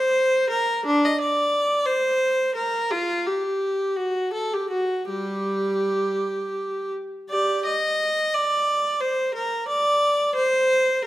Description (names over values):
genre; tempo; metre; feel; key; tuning
classical, baroque-style suite movement for unaccompanied viola; 52-60 BPM (dotted quarters); 6/8; rubato; G minor; A4 = 438 Hz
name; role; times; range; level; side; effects
clear viola; solo; 0.0-11.0 s; G3 to Eb5; -20 LUFS; equal; none
room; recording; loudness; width
moderate recital hall reverb, RT60 1.4 s; none; -21 LUFS; side -15 dB against mid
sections
0.0-7.3 A section; 7.3-11.1 B section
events
none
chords
none